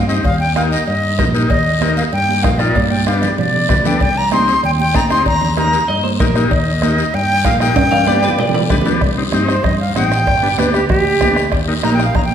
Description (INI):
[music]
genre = latin, cumbia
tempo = 192 BPM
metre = 4/4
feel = straight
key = unclear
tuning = A4 = 444 Hz
[part]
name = bright reedy silver concert flute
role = melody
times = 0.0-12.3 s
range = G4 to C6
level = -17 LUFS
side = equal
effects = none
[part]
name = fingered electric bass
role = bass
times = 0.0-12.3 s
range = G1 to B2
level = -19 LUFS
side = equal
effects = none
[part]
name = combo organ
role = accompaniment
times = 0.1-12.1 s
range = Bb3 to A4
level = -20 LUFS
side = left 3 dB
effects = none
[part]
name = guiro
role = percussion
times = 0.1-12.3 s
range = none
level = -29 LUFS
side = left 6 dB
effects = none
[part]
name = bombo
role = percussion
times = 0.2-12.3 s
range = none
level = -20 LUFS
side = equal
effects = none
[part]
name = cowbell and timbales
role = percussion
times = 0.2-12.3 s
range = none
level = -25 LUFS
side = right 2 dB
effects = none
[part]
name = congas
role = percussion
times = 0.6-12.3 s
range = none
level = -22 LUFS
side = right 5 dB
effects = none
[part]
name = clean electric guitar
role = second line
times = 5.9-9.0 s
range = Bb4 to F5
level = -21 LUFS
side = left 1 dB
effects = none
[sound]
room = wet recital hall reverb, RT60 1.4 s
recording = recorded in a church or concert hall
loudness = -12 LUFS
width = side -9 dB against mid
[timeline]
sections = 0.0-9.0 A section; 9.0-12.3 B section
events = drum fill 2.8-4.0, 7.8-9.0; flute solo 9.0-12.3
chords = 0.2 Eb; 2.8 G; 4.0 Cm; 5.3 Eb; 7.8 G; 9.0 Cm; 10.3 G; 11.5 Eb